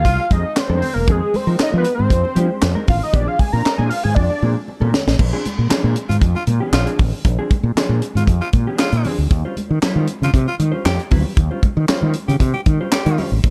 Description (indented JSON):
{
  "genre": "funk",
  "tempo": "117 BPM",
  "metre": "4/4",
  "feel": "straight",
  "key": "unclear",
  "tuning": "A4 = 438 Hz",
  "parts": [
    { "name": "fat analog lead", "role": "melody", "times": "0.0-4.5 s", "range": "Ab4 to Bb5", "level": "-23 LUFS", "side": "equal", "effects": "chorus, phaser, slapback echo" },
    { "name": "growling tenor saxophone", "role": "second line", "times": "0.0-0.3, 6.1-13.3 s", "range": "F4 to G4", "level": "-28 LUFS", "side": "equal", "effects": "none" },
    { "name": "mellow electric guitar", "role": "accompaniment", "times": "0.0-13.5 s", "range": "F3 to C5", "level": "-29 LUFS", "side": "equal", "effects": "spring reverb" },
    { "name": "fretless electric bass", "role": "bass", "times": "0.0-13.5 s", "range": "E1 to F3", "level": "-20 LUFS", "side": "equal", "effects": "none" },
    { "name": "tight funk drum kit", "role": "drums", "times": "0.0-13.5 s", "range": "crash cymbal, handclaps, hi-hat, kick drum, snare drum", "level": "-21 LUFS", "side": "equal", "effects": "none" },
    { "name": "congas", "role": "percussion", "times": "0.1-13.5 s", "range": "none", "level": "-32 LUFS", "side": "equal", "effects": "none" }
  ],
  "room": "small room reverb",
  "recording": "dark, warm production",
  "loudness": "-18 LUFS",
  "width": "mono",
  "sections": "0.0-5.2 A section; 5.2-13.5 B section",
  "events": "analog synth lead solo 0.0-5.2; drum fill 4.2-5.2",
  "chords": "0.0 Fm7; 3.1 Bb9; 9.3 Eb13"
}